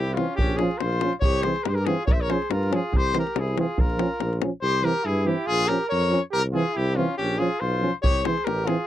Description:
balkan folk, Balkan brass band; 141 BPM; 2/4; swing 55% on 16ths; A4 = 442 Hz
clear trumpet; melody; 0.0-8.9 s; F4 to E5; -26 LUFS; left 3 dB
warm flugelhorn; second line; 0.0-8.9 s; Db4 to C5; -31 LUFS; right 6 dB
warm tuba; bass; 0.0-8.7 s; A1 to G2; -27 LUFS; equal
davul; percussion; 0.1-4.5, 8.0-8.8 s; -25 LUFS; equal
clear euphonium; accompaniment; 0.2-8.8 s; C4 to Db4; -30 LUFS; left 4 dB
mellow euphonium; accompaniment; 0.2-8.8 s; E3 to F3; -27 LUFS; right 4 dB
little or no reverb; dry, close 1970s-style studio recording; -21 LUFS; side -12 dB against mid
0.0-4.6 A section; 4.6-8.9 A section
0.4 Bbm; 1.2 C; 2.1 Bbm; 2.9 C; 3.8 Bbm; 4.6 C; 5.5 Bbm; 6.3 C; 7.2 Bbm; 8.0 C

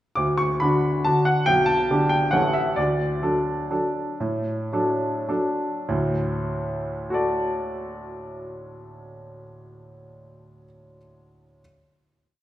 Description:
classical, piano waltz; 96-148 BPM; 3/4; rubato; D major; A4 = 440 Hz
clear baby grand piano; solo; 0.2-11.6 s; A1 to D6; -22 LUFS; equal
wet recital hall reverb, RT60 1.8 s; heard from further back in the room; -21 LUFS; side -13 dB against mid
0.2-5.9 A section; 5.9-9.5 final chord
slowing down 2.1-5.9
0.2 D; 1.5 G/B; 2.3 A; 2.8 D

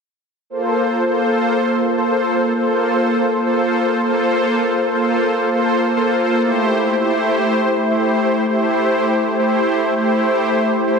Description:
drum and bass; 162 BPM; 4/4; straight; A4 = 440 Hz
lush unison pad; sustained chords; 0.5-11.0 s; A3 to C5; -15 LUFS; equal; chorus
moderate lush hall reverb, RT60 2.6 s; dense, heavily limited modern master; -15 LUFS; side -5 dB against mid
0.5-11.0 A section
0.5 Fadd11/Bb; 6.4 Am7

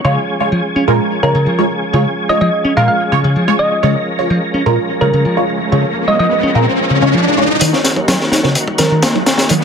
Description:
breakbeat, breaks; 127 BPM; 4/4; straight; A4 = 441 Hz
tonewheel organ; sustained chords; 0.0-9.6 s; Eb3 to Bb4; -20 LUFS; equal; chorus vibrato, fast rotary speaker, sidechain pumping, low-pass filter
modern bright picked electric bass; riff; 0.0-9.6 s; Bb2 to Eb4; -17 LUFS; equal; vintage 12-bit sampler grit, low-pass filter, ping-pong delay
filtered dub chord stab; stabs; 0.0-9.6 s; Gb3 to Db5; -18 LUFS; right 2 dB; phaser, lush chorus, ping-pong delay
thumb-piano-like synth pluck; melody; 1.2-8.9 s; Bb4 to F5; -18 LUFS; right 1 dB; chorus, AM radio sound, ping-pong delay
riser; sound effects; 5.0-9.6 s; -18 LUFS; left 1 dB
crunchy breakbeat drum kit; drums; 7.6-9.6 s; hi-hat, kick drum, snare drum; -14 LUFS; left 1 dB; high-pass filter on kick, high-pass filter on hats, high-pass filter on snare, high-pass filter on room
detuned saw bass; bass; 8.0-9.3 s; Eb1 to Eb2; -23 LUFS; equal
light reverb, studio ambience; -11 LUFS; side -6 dB against mid
0.0-7.6 A section; 7.6-9.6 B section
riser 5.0-7.6, 7.6-9.6; build-up 7.6-9.6; filter sweep on synth stab 7.6-9.6
0.1 Db; 7.6 Ebm7

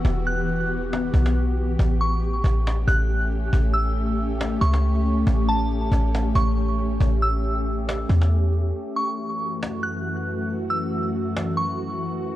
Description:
hip hop, atmospheric cloud-rap; 138 BPM; 4/4; half-time; A4 = 442 Hz
ethereal airy pad; sustained chords; 0.0-12.4 s; E2 to G4; -26 LUFS; left 1 dB; ensemble chorus, built-in reverb
clean 808-style bass; bass; 0.0-8.7 s; E1 to E2; -21 LUFS; equal
cajon; drums; 0.1-11.5 s; -30 LUFS; equal
glassy synth bell; melody; 0.3-12.2 s; A5 to F#6; -28 LUFS; right 1 dB; chorus, tremolo, low-pass filter, digital delay
light reverb; worn, warbling old tape, cassette tape, warbly pitch drift; -20 LUFS; side -14 dB against mid
0.0-8.7 A section; 8.7-12.4 B section
0.0 Emadd9; 1.8 A7; 8.7 F#m7

